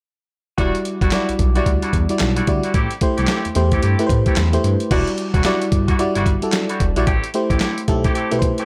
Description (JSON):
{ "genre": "R&B, new jack swing", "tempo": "111 BPM", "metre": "4/4", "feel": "swing 60% on 16ths", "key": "E minor", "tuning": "A4 = 438 Hz", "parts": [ { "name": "FM electric piano", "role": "accompaniment", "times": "0.6-8.7 s", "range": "F#3 to D5", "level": "-23 LUFS", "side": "equal", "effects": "chorus" }, { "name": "warm horn section", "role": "stabs", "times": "0.6-8.7 s", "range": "G3 to G4", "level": "-28 LUFS", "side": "equal", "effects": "none" }, { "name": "smooth synth bass", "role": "bass", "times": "0.6-8.5 s", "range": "E1 to A2", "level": "-23 LUFS", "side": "equal", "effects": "none" }, { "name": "dusty soul sampler-style drum kit", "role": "drums", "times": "0.6-8.7 s", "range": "crash cymbal, handclaps, hi-hat, kick drum, snare drum", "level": "-23 LUFS", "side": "equal", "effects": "none" } ], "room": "little or no reverb", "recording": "none", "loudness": "-18 LUFS", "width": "mono", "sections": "0.6-4.9 A section; 4.9-8.7 B section", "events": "none", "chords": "0.6 Em9; 2.7 Am7; 4.9 Em9; 7.1 Am7", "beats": "| 0.58 1.12 1.66 2.20 | 2.74 3.29 3.83 4.37 | 4.91 5.45 5.99 6.53 | 7.07 7.61 8.15" }